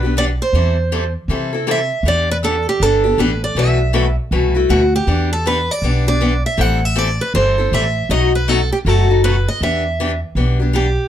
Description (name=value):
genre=acoustic string swing (jazz manouche)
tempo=159 BPM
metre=4/4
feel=swing 62% on 8ths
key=E minor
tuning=A4 = 439 Hz
part: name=picked steel-string acoustic guitar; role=melody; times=0.0-11.1 s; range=F#4 to F#5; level=-18 LUFS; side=right 2 dB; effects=plate reverb
part: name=picked steel-string acoustic guitar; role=accompaniment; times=0.0-10.9 s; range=B2 to B4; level=-19 LUFS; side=left 4 dB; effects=none
part: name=upright bass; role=bass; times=0.0-11.0 s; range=F#1 to C3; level=-18 LUFS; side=equal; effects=none
room=light reverb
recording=none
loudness=-14 LUFS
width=side -10 dB against mid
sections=0.0-11.1 A section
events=none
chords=0.0 Em7; 0.5 C6/E; 2.0 Em7; 3.6 B7sus4; 5.1 Em7; 6.6 Am7; 8.1 B7; 9.6 Em7